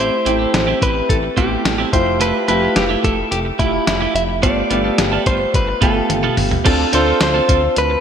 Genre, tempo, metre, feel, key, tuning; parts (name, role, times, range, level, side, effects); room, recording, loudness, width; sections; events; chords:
1980s-style pop; 108 BPM; 4/4; straight; A4 = 440 Hz
direct-recorded clean electric guitar; melody; 0.0-8.0 s; E4 to E5; -19 LUFS; equal; spring reverb, ping-pong delay
warm baby grand piano; accompaniment; 0.0-8.0 s; A3 to A4; -20 LUFS; equal; wide subtle chorus
twelve-string electric guitar; riff; 0.0-7.9 s; A3 to A4; -23 LUFS; right 7 dB; lush chorus
chorused synth bass; bass; 0.0-8.0 s; F1 to D2; -23 LUFS; left 1 dB
lo-fi sampler-style drum kit; drums; 0.3-7.9 s; crash cymbal, hi-hat, kick drum, snare drum, tambourine, toms; -19 LUFS; left 1 dB; gated reverb
moderate lush hall reverb, RT60 1.9 s, digital ambience; bright 1980s-style digital production; -14 LUFS; side -8 dB against mid
0.0-6.7 A section; 6.7-8.0 B section
drum fill 6.1-6.7
0.0 Am7; 1.9 Fmaj9; 4.4 G9; 6.7 Dm7